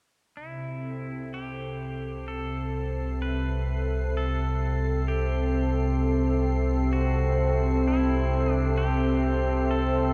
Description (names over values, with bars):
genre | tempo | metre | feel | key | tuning
ambient | 65 BPM | 4/4 | straight | unclear | A4 = 441 Hz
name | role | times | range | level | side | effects
pedal steel guitar | melody | 0.4-10.1 s | E4 to B4 | -39 LUFS | equal | diffuse ambient delay
warm analog pad | sustained chords | 0.4-10.1 s | C3 to E5 | -29 LUFS | equal | subtle chorus
warm sub bass | bass | 0.4-10.1 s | C2 | -30 LUFS | equal | none
wind-like tuned noise texture | texture | 1.1-10.1 s | C7 | -49 LUFS | equal | built-in reverb
room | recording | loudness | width
wet huge ambient reverb, RT60 8.2 s | in a vast, echoing space | -27 LUFS | mono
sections
0.4-10.1 A section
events
fade-in on synth texture 0.4-10.1; fade-in on pedal steel guitar 0.4-10.1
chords
0.4 C6